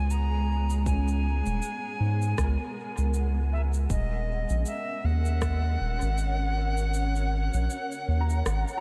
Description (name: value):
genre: ambient dub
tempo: 79 BPM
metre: 4/4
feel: swing 57% on 16ths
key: G# minor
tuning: A4 = 441 Hz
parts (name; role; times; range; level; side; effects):
- bright reedy silver concert flute; melody; 0.0-8.8 s; D#5 to A#5; -37 LUFS; equal; dub echo
- granular cloud pad; sustained chords; 0.0-8.8 s; G#3 to F#5; -39 LUFS; equal; built-in reverb, ensemble chorus
- soft dub sub bass; bass; 0.0-8.6 s; D#1 to G#2; -28 LUFS; equal; none
- electronic cabasa and rim click; drums; 0.1-8.8 s; none; -41 LUFS; equal; small room ambience, dub echo
- felt-muted upright piano; arpeggios; 0.9-8.8 s; C#4 to A#5; -44 LUFS; equal; analog chorus, diffuse ambient delay
- electronic kick drum; drums; 0.9-5.6 s; none; -33 LUFS; equal; small room ambience
room: light reverb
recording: none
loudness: -28 LUFS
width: mono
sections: 0.0-8.8 A section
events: kick drops out 6.9-8.8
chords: 0.0 G#m7; 3.9 D#m7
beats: 0.10 | 0.86 1.62 2.38 3.14 | 3.90 4.66 5.42 6.18 | 6.94 7.70 8.46